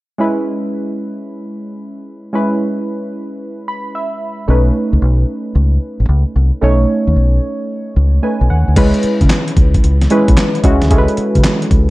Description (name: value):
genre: R&B, new jack swing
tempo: 112 BPM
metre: 4/4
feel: swing 66% on 16ths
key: C# minor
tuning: A4 = 441 Hz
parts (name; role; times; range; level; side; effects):
- warm analog keys; accompaniment; 0.2-11.9 s; G#3 to B5; -17 LUFS; right 1 dB; chorus
- deep dub fingered electric bass; bass; 4.5-11.9 s; A1 to C#3; -12 LUFS; equal; none
- dusty soul sampler-style drum kit; drums; 8.8-11.9 s; crash cymbal, handclaps, hi-hat, kick drum, snare drum; -13 LUFS; equal; overdrive, gated reverb
room: little or no reverb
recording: none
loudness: -12 LUFS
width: side -19 dB against mid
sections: 0.2-8.8 A section; 8.8-11.9 B section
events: synth keys fill 3.4-4.5, 8.0-8.8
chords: 0.2 C#m7; 4.5 B9; 8.8 C#m7